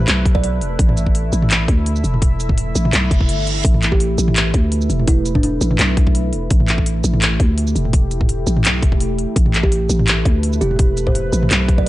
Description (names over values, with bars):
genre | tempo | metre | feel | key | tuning
half-time drum and bass | 168 BPM | 4/4 | swing 54% on 16ths, half-time | unclear | A4 = 440 Hz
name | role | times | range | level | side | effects
deep dark ambient pad | sustained chords | 0.0-11.9 s | A3 to E5 | -26 LUFS | equal | chorus, built-in reverb, sidechain pumping
growling 808-style bass | bass | 0.0-11.9 s | E1 to D2 | -18 LUFS | equal | none
drum and bass drum kit | drums | 0.0-11.9 s | handclaps, hi-hat, shaker, toms | -20 LUFS | equal | none
kalimba | melody | 0.3-0.5, 3.9-5.5, 9.6-11.9 s | D4 to D5 | -25 LUFS | right 1 dB | analog delay
electronic kick drum | drums | 0.3-11.8 s | none | -15 LUFS | equal | none
reverse cymbal | sound effects | 3.1-3.6 s | none | -26 LUFS | right 6 dB | none
room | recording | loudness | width
digital ambience | dry, gritty hardware recording, cassette tape, nothing above 10.7 kHz | -14 LUFS | side -16 dB against mid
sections
0.0-11.9 A section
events
reverse cymbal 3.1-3.6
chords
0.0 A5